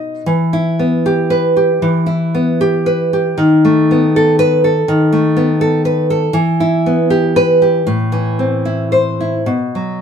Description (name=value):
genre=romantic piece for solo classical guitar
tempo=67-84 BPM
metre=4/4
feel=rubato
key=E minor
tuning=A4 = 443 Hz
part: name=nylon-string guitar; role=solo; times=0.0-10.0 s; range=A2 to D#5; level=-12 LUFS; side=equal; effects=none
room=moderate studio reverb, RT60 0.7 s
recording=band playing live in one room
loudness=-11 LUFS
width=side -7 dB against mid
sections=0.3-10.0 A section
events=none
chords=0.3 Em; 3.4 B7/D#; 6.3 Em; 7.9 Am; 9.5 B5